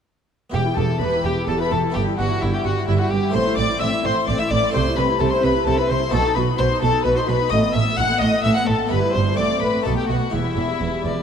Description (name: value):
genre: classical, baroque-style concerto movement with solo episodes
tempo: 129 BPM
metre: 3/4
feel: straight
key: E minor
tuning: A4 = 441 Hz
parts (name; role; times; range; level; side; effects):
- rich violin; melody; 0.5-11.2 s; E4 to F#5; -26 LUFS; left 2 dB; none
- warm chamber violin section; melody; 0.5-11.2 s; E5 to F#6; -27 LUFS; left 7 dB; none
- warm chamber violin section; second line; 0.5-11.2 s; E4 to F#5; -24 LUFS; left 2 dB; none
- dark chamber viola section; accompaniment; 0.5-11.2 s; E3 to G4; -27 LUFS; left 2 dB; none
- harpsichord; accompaniment; 0.5-11.2 s; E2 to A4; -26 LUFS; right 1 dB; none
- dark chamber cello section; bass; 0.5-11.1 s; E2 to C3; -26 LUFS; right 3 dB; none
- warm chamber double bass section; bass; 0.5-11.1 s; E1 to C2; -25 LUFS; right 3 dB; none
room: moderate concert hall reverb, RT60 1.9 s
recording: dark, warm production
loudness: -17 LUFS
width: side -7 dB against mid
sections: 0.5-11.2 A section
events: none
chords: 0.5 Em; 1.9 Em/G; 3.3 Am; 4.7 Am/C; 6.1 B; 7.5 B5/A; 8.9 Em/G; 9.4 Am; 9.9 B7; 10.3 Em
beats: | 0.54 1.01 1.48 | 1.95 2.41 2.88 | 3.35 3.81 4.28 | 4.74 5.20 5.66 | 6.12 6.59 7.05 | 7.52 7.98 8.45 | 8.92 9.38 9.86 | 10.34 10.82